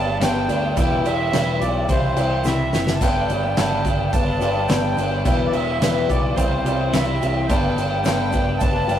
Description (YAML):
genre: folk rock and heartland rock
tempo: 107 BPM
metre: 4/4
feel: straight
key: G major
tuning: A4 = 440 Hz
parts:
  - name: accordion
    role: melody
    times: 0.0-9.0 s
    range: C5 to A5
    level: -27 LUFS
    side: right 1 dB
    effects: light tremolo tuning
  - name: picked steel-string acoustic guitar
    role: accompaniment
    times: 0.0-9.0 s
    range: G2 to G4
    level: -24 LUFS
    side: left 3 dB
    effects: none
  - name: mellow tonewheel organ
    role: sustained chords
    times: 0.0-9.0 s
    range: none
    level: barely audible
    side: none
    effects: none
  - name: twelve-string electric guitar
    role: riff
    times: 0.0-9.0 s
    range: E2 to G4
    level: -27 LUFS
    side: left 1 dB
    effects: none
  - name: picked electric bass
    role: bass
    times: 0.0-9.0 s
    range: E1 to D2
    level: -26 LUFS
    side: equal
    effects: none
  - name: loose indie drum kit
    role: drums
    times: 0.2-9.0 s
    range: crash cymbal, kick drum, snare drum, splash cymbal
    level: -22 LUFS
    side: right 1 dB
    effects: none
  - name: tube shaker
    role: percussion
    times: 0.2-9.0 s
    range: none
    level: -44 LUFS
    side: right 5 dB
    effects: none
room: moderate stone room reverb, RT60 1.1 s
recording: rough rehearsal-room recording, tube saturation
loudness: -18 LUFS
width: side -10 dB against mid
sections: 0.0-9.0 A section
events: drum fill 2.4-3.0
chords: 0.0 G; 0.8 Em; 1.9 C; 3.0 G; 5.2 Em; 6.4 C; 7.5 G